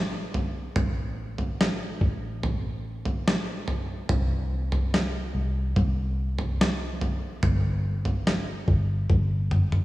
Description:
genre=pop ballad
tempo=72 BPM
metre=4/4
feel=straight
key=A minor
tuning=A4 = 440 Hz
part: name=vintage muted fingered electric bass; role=bass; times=0.0-9.8 s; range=G1 to C2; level=-28 LUFS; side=equal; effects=none
part: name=boom bap sampler-style drum kit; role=drums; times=0.3-9.8 s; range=kick drum, snare drum, toms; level=-26 LUFS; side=equal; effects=none
room=moderate lush hall reverb, RT60 2.8 s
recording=big arena sound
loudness=-24 LUFS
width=side -17 dB against mid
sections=0.0-9.8 A section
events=drum fill 9.1-9.8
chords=none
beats=| 0.76 1.60 2.43 3.26 | 4.10 4.93 5.76 6.60 | 7.43 8.26 9.10

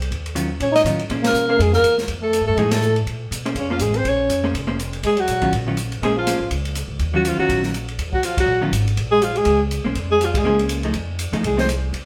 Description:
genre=jazz, small-group swing and bop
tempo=244 BPM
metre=4/4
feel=swing 57% on 8ths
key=Bb minor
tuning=A4 = 440 Hz
part: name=upright bass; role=bass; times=0.0-12.1 s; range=F1 to Cb3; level=-27 LUFS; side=equal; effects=none
part: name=open jazz drum kit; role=drums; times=0.0-12.0 s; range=hi-hat, kick drum, ride cymbal, snare drum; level=-30 LUFS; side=equal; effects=none
part: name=vintage hollow-body jazz guitar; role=accompaniment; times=0.4-11.7 s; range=Eb3 to C5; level=-27 LUFS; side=equal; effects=none
part: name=clear alto saxophone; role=melody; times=0.6-11.7 s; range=Db4 to Eb5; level=-22 LUFS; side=equal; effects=none
part: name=mellow trombone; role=second line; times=0.6-11.7 s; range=Db3 to Eb4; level=-28 LUFS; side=equal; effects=none
room=wet stone room reverb, RT60 1.1 s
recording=band playing live in one room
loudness=-20 LUFS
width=mono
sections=0.0-3.1 A section; 3.1-12.1 A section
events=band accent 1.2, 2.7, 8.4, 10.3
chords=0.1 Ebm9; 1.1 Bbm9; 2.1 F7#9; 3.1 Bbm9; 5.0 Ebm9; 6.0 Bbm9; 7.0 Ebm9; 9.0 Bbm9; 10.9 F7#9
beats=| 0.12 0.36 0.61 0.85 | 1.10 1.34 1.59 1.83 | 2.08 2.33 2.57 2.82 | 3.06 3.31 3.55 3.80 | 4.05 4.29 4.54 4.78 | 5.03 5.28 5.52 5.77 | 6.01 6.26 6.50 6.75 | 7.00 7.24 7.49 7.74 | 7.98 8.23 8.47 8.72 | 8.97 9.21 9.46 9.71 | 9.95 10.20 10.44 10.69 | 10.94 11.18 11.43 11.68 | 11.92

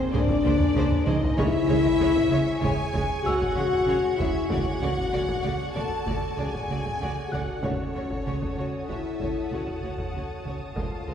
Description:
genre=cinematic, suspense film score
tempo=96 BPM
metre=5/4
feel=straight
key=unclear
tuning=A4 = 440 Hz
part: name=rich studio violin section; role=second line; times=0.0-11.1 s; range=B#4 to A5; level=-34 LUFS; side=left 1 dB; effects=none
part: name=dark French horn section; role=sustained chords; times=0.0-11.1 s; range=B#3 to A4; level=-26 LUFS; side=left 4 dB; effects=none
part: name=ethereal airy pad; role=sustained chords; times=0.0-11.1 s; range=G#4 to B#5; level=-38 LUFS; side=equal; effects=ensemble chorus, built-in reverb
part: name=small celesta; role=texture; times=0.0-10.8 s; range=F#5 to F#6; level=-38 LUFS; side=equal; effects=none
part: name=clear studio violin section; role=melody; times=0.1-11.1 s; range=B#4 to D5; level=-39 LUFS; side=left 1 dB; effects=none
part: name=rich studio viola section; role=accompaniment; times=0.1-11.1 s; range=G#3 to A#4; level=-36 LUFS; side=equal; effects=none
part: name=warm studio cello section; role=bass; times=0.1-11.1 s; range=C#3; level=-33 LUFS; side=right 3 dB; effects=none
part: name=warm studio double bass section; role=bass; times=0.1-11.1 s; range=C#2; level=-33 LUFS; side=right 3 dB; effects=none
part: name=taiko ensemble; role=drums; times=0.1-11.1 s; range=none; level=-31 LUFS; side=right 1 dB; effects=none
part: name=timpani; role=percussion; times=1.4-8.5 s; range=C#3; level=-36 LUFS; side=right 3 dB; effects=none
part: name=clear studio violin section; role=texture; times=1.4-11.1 s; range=A5 to G#6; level=-43 LUFS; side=left 2 dB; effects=none
room=wet scoring stage reverb, RT60 1.8 s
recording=heard from further back in the room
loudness=-23 LUFS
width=side -8 dB against mid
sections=0.0-11.1 A section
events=drum fill 0.6-1.4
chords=0.0 G#add9/C#; 1.4 C#m; 4.5 D/C#; 7.6 F#m/C#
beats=0.13 0.75 | 1.38 2.00 2.63 3.25 3.88 | 4.50 5.13 5.75 6.38 7.00 | 7.63 8.25 8.88 9.50 10.13 | 10.75

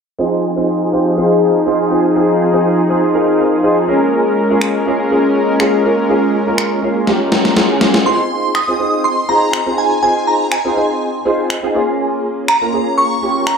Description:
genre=dance-pop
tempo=122 BPM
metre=4/4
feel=straight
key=F minor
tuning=A4 = 440 Hz
part: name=warm concert grand piano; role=accompaniment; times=0.2-13.5 s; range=Bb3 to Bb5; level=-16 LUFS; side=right 1 dB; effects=ensemble chorus, low-pass filter
part: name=soft supersaw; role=sustained chords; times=0.2-8.0 s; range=F3 to Bb4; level=-15 LUFS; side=left 1 dB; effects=low-pass filter
part: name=electronic finger snaps and snare drum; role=drums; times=4.6-13.6 s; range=none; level=-17 LUFS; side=left 1 dB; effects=gated reverb, gated reverb snare, overdrive
part: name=shimmering bell with halo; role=melody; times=8.1-13.6 s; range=Ab5 to Eb6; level=-15 LUFS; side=right 1 dB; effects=ensemble chorus, diffuse ambient delay
room=wet plate reverb, RT60 1.2 s, digital ambience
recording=dreamy mix soaked in reverb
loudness=-12 LUFS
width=side -6 dB against mid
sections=0.2-8.1 A section; 8.1-13.6 B section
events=filter sweep 0.2-8.1; grand piano fill 3.1-4.1, 7.1-8.1; drum fill 7.1-8.1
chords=0.2 Fm7; 3.9 Bbm7; 8.1 Fm7; 11.7 Bbm7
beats=| 0.19 0.68 1.17 1.66 | 2.16 2.65 3.14 3.63 | 4.12 4.62 5.11 5.60 | 6.09 6.58 7.07 7.57 | 8.06 8.55 9.04 9.53 | 10.03 10.52 11.01 11.50 | 11.99 12.48 12.97 13.47

